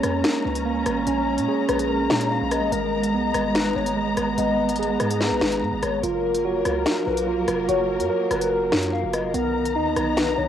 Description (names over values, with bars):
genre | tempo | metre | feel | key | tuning
hip hop, drill | 145 BPM | 4/4 | half-time | unclear | A4 = 440 Hz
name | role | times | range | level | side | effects
hollow clarinet-like synth lead | second line | 0.0-10.5 s | Bb4 to F5 | -27 LUFS | left 9 dB | chorus, phaser, cassette tape, tape echo
dark symphonic string section | sustained chords | 0.0-10.5 s | D#3 to Bb5 | -27 LUFS | left 2 dB | cassette tape
mellow tine electric piano | arpeggios | 0.0-10.5 s | Ab3 to Bb4 | -25 LUFS | right 6 dB | cassette tape, tape echo
hard-hitting 808-style bass | bass | 0.0-10.5 s | F1 to Bb2 | -31 LUFS | left 1 dB | none
drill drum kit | drums | 0.0-10.3 s | hi-hat, rim click, snare drum | -26 LUFS | left 1 dB | cassette tape
room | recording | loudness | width
moderate spring reverb, RT60 1.2 s, digital ambience | home recording on cassette | -20 LUFS | side -9 dB against mid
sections
0.0-10.5 A section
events
none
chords
0.0 Bbm7; 2.7 Abmadd9; 6.0 Gbmaj7; 9.3 Bmaj7